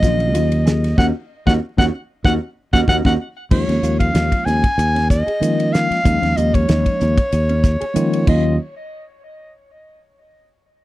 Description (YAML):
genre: electric jazz fusion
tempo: 95 BPM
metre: 4/4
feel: swing 54% on 16ths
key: unclear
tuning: A4 = 439 Hz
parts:
  - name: breathy soprano saxophone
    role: melody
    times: 0.0-8.6 s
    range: Db5 to Ab5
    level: -21 LUFS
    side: equal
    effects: none
  - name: mellow tine electric piano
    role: accompaniment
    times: 0.0-8.6 s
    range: Eb3 to F4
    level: -22 LUFS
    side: left 1 dB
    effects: medium stereo tremolo
  - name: mellow electric guitar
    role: stabs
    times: 0.0-8.5 s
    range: Db4 to Ab4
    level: -27 LUFS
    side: right 3 dB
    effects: lush chorus
  - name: sustaining fretless electric bass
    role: bass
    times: 0.0-8.6 s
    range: Bb1 to Eb3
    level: -18 LUFS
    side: equal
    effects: none
  - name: damped 70s drum kit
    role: drums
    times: 0.0-8.4 s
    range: crash cymbal, hi-hat, kick drum, ride cymbal, snare drum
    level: -18 LUFS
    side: equal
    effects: none
room: little or no reverb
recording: dry, close 1970s-style studio recording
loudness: -15 LUFS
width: side -16 dB against mid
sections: 0.0-3.5 A section; 3.5-8.6 B section; 8.6-10.8 C section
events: band accent 1.0-3.5; drum fill 2.9-3.5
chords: 0.0 Ebm9; 3.5 Bbm7/Eb; 8.3 Ebm9; 8.6 N.C.